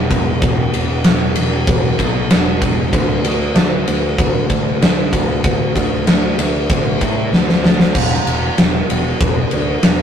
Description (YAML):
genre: heavy metal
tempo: 96 BPM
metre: 4/4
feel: straight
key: unclear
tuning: A4 = 439 Hz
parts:
  - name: fuzz picked electric bass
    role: bass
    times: 0.0-10.0 s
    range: E1 to A2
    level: -18 LUFS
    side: equal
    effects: overdrive
  - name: big rock drum kit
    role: drums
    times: 0.1-10.0 s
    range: crash cymbal, kick drum, ride cymbal, snare drum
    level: -14 LUFS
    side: equal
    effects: none
room: light reverb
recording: rough rehearsal-room recording, tube saturation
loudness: -13 LUFS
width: side -8 dB against mid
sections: 0.0-8.0 A section; 8.0-10.0 B section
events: drum fill 7.3-8.0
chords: none